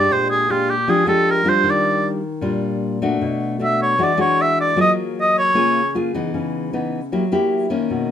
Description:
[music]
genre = bossa nova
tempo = 154 BPM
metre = 4/4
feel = straight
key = unclear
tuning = A4 = 440 Hz
[part]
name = clear oboe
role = melody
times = 0.0-5.9 s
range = F4 to E5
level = -16 LUFS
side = right 1 dB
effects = none
[part]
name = nylon-string guitar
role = accompaniment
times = 0.0-8.1 s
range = Bb2 to Ab4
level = -19 LUFS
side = left 2 dB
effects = none
[sound]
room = light reverb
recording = minimal, uncompressed stereo recording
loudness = -16 LUFS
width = side -9 dB against mid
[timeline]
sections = 0.0-8.1 A section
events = oboe solo 0.0-8.1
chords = 0.1 Bb6; 1.7 Ebmaj9; 3.2 Bm7; 4.0 E9; 4.8 Gbmaj9; 6.3 Dbm9; 7.1 Gb7b9

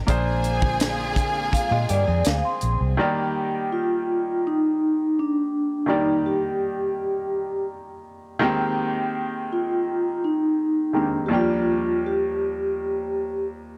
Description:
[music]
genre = lush 1970s-style soul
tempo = 83 BPM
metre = 4/4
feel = straight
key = Eb major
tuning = A4 = 438 Hz
[part]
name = clear baby grand piano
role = accompaniment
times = 0.0-13.8 s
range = Eb2 to D5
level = -29 LUFS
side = equal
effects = none
[part]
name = warm studio string section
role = sustained chords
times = 0.0-3.0 s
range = D3 to F4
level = -38 LUFS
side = equal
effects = none
[part]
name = rich studio violin section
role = second line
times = 0.1-2.6 s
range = Ab4 to Ab5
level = -32 LUFS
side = equal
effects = tape echo
[part]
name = vintage muted fingered electric bass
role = bass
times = 0.1-2.9 s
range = Bb1 to Bb2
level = -27 LUFS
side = equal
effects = none
[part]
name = tight funk drum kit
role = drums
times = 0.1-2.8 s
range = hi-hat, kick drum, snare drum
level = -26 LUFS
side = equal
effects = none
[part]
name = vibraphone with soft mallets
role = melody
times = 1.2-13.4 s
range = D4 to C6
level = -25 LUFS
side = equal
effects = none
[part]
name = direct-recorded clean electric guitar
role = riff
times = 1.7-2.9 s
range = Ab3 to Ab4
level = -36 LUFS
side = equal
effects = none
[sound]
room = light reverb, small room ambience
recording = none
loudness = -24 LUFS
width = mono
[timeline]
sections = 0.0-3.0 A section; 3.0-13.8 B section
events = vibraphone solo 0.0-3.0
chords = 0.1 Bb9; 3.0 Ebmaj7; 8.4 Abmaj9/Eb; 11.3 Gm7/Eb

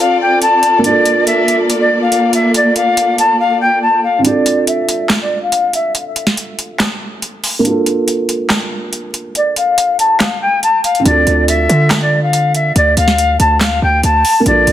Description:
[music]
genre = hip hop, trap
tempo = 141 BPM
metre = 4/4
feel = half-time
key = D minor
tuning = A4 = 445 Hz
[part]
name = jazz flute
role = melody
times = 0.0-5.9, 9.4-14.7 s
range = D5 to A5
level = -12 LUFS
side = left 1 dB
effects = low-pass filter, ping-pong delay
[part]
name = felt-muted upright piano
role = accompaniment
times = 0.0-14.7 s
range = Bb3 to A4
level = -18 LUFS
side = right 3 dB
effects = low-pass filter
[part]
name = dark symphonic string section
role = sustained chords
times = 0.0-4.2 s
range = Bb3 to D5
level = -16 LUFS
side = equal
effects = none
[part]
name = booming analog drum machine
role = drums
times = 0.4-14.7 s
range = handclaps, hi-hat, snare drum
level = -17 LUFS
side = equal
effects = none
[part]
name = hard-hitting 808-style bass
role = bass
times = 11.1-14.7 s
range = Bb1 to D3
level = -14 LUFS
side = equal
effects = none
[sound]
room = moderate recital hall reverb, RT60 1.8 s, small room ambience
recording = dense, heavily limited modern master, vinyl crackle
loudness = -11 LUFS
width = side -11 dB against mid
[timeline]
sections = 0.0-4.2 A section; 4.2-14.7 B section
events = break 4.2-11.1; filter sweep 4.2-11.1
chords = 0.0 Dm7

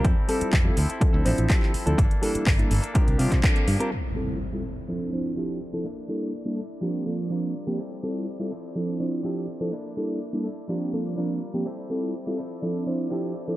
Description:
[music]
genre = filtered disco house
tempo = 124 BPM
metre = 4/4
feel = straight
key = G dorian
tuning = A4 = 439 Hz
[part]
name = bright reed electric piano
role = accompaniment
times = 0.0-13.6 s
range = F3 to C5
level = -28 LUFS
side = right 1 dB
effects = phaser, sidechain pumping, low-pass filter
[part]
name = direct-recorded clean electric guitar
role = riff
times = 0.0-13.6 s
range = E3 to Bb4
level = -36 LUFS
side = left 1 dB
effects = spring reverb, sidechain pumping, low-pass filter
[part]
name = fingered electric bass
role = bass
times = 0.0-3.8 s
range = G1 to C3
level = -24 LUFS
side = equal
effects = sidechain pumping, low-pass filter
[part]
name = electronic kick drum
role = drums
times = 0.0-3.5 s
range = none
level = -21 LUFS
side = equal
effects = overdrive
[part]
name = house drum kit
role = drums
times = 0.0-3.9 s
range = handclaps, hi-hat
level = -31 LUFS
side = equal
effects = overdrive, sidechain pumping on hats, low-pass filter on hats, low-pass filter on snare, low-pass filter on room
[part]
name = dark chamber violin section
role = sustained chords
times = 3.9-13.6 s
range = D5 to D6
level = -47 LUFS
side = left 1 dB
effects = vintage 12-bit sampler grit, sidechain pumping, low-pass filter
[part]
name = impact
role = sound effects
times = 3.9-5.9 s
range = none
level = -34 LUFS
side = equal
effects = none
[sound]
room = light reverb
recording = dark, warm production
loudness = -23 LUFS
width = side -16 dB against mid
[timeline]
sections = 0.0-3.9 A section; 3.9-13.6 B section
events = band accent 3.4; impact 3.9-5.9; filter sweep 3.9-13.6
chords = 0.0 Fmaj9; 0.8 Dm9; 2.0 Gm69; 3.0 C9sus4; 3.9 Fmaj9; 4.6 Dm9; 5.9 Gm69; 6.8 C9sus4; 7.8 Fmaj9; 8.5 Dm9; 9.7 Gm69; 10.7 C9sus4; 11.7 Fmaj9; 12.4 Dm9

